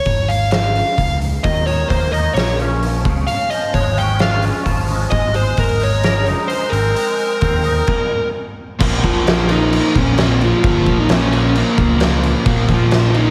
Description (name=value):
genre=quiet-loud alternative rock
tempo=130 BPM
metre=4/4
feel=straight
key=Bb minor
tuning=A4 = 439 Hz
part: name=fuzz lead guitar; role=melody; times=0.0-13.3 s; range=F3 to G5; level=-22 LUFS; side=equal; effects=distortion, slapback echo
part: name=overdriven picked electric bass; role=bass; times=0.1-13.3 s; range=G1 to Eb2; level=-21 LUFS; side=equal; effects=none
part: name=oversized low-tuned drum kit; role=drums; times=0.1-13.3 s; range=crash cymbal, hi-hat, kick drum, snare drum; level=-22 LUFS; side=equal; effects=none
part: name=twangy electric guitar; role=arpeggios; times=1.4-7.9 s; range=Bb2 to Bb4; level=-26 LUFS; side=equal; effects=ensemble chorus, slapback echo
part: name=overdriven semi-hollow guitar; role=riff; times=8.8-13.3 s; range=Bb2 to Bb3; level=-21 LUFS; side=equal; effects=slapback echo
room=moderate lush hall reverb, RT60 1.9 s, studio reverb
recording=big arena sound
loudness=-16 LUFS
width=mono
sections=0.0-8.8 A section; 8.8-13.3 B section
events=half time 0.0-8.8; stop 7.9-8.8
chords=0.0 Db; 1.4 Eb5; 2.4 Bbm; 3.0 Db; 5.1 Abadd9; 8.8 Bbm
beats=0.06 0.52 0.98 | 1.44 1.90 2.36 2.82 | 3.28 3.74 4.20 4.66 | 5.12 5.58 6.04 6.50 | 6.96 7.42 7.88 8.34 | 8.80 9.26 9.72 10.18 | 10.63 11.09 11.55 12.01 | 12.46 12.92